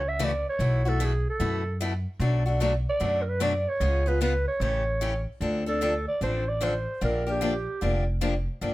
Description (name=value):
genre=acoustic string swing (jazz manouche)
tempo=150 BPM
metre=4/4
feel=swing 64% on 8ths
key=D minor from 5.4 s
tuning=A4 = 440 Hz
part: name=growling clarinet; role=melody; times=0.0-8.0 s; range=G4 to E5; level=-28 LUFS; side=right 2 dB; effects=none
part: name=upright bass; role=bass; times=0.0-8.7 s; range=F1 to F#2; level=-27 LUFS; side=equal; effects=none
part: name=picked steel-string acoustic guitar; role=accompaniment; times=0.2-8.7 s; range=B2 to A4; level=-29 LUFS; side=left 2 dB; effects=none
room=light reverb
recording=none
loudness=-24 LUFS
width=side -17 dB against mid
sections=0.0-5.4 A section; 5.4-8.7 B section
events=none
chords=0.0 F#m7; 0.6 B7sus4; 2.2 Bm7; 3.8 C#7; 4.6 A7; 5.4 Dm7; 7.0 Bb6